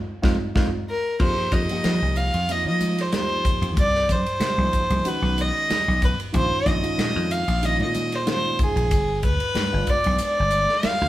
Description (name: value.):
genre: electric jazz fusion.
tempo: 93 BPM.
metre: 4/4.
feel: swing 54% on 16ths.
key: F minor.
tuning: A4 = 443 Hz.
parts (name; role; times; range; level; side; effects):
dark baby grand piano; accompaniment; 0.2-11.0 s; D#3 to Ab4; -30 LUFS; right 1 dB; none.
dry thumbed slap bass; bass; 0.2-11.1 s; G1 to F3; -25 LUFS; equal; none.
modern studio drum kit; drums; 0.2-11.0 s; crash cymbal, hi-hat, kick drum, ride cymbal, snare drum; -25 LUFS; equal; none.
congas; percussion; 0.2-11.0 s; none; -32 LUFS; right 1 dB; none.
warm violin; melody; 0.9-11.1 s; Ab4 to F5; -23 LUFS; equal; none.
room: moderate stone room reverb, RT60 1.0 s.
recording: band playing live in one room.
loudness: -20 LUFS.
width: side -14 dB against mid.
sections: 0.0-1.2 A section; 1.2-11.1 B section.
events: grand piano fill 0.0-1.2; band accent 0.0-1.2; drum fill 0.6-1.2.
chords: 0.0 F7(no3); 1.2 Fsus2; 3.8 Cm7; 5.1 Badd9; 6.3 Bbm7; 8.9 G(b9).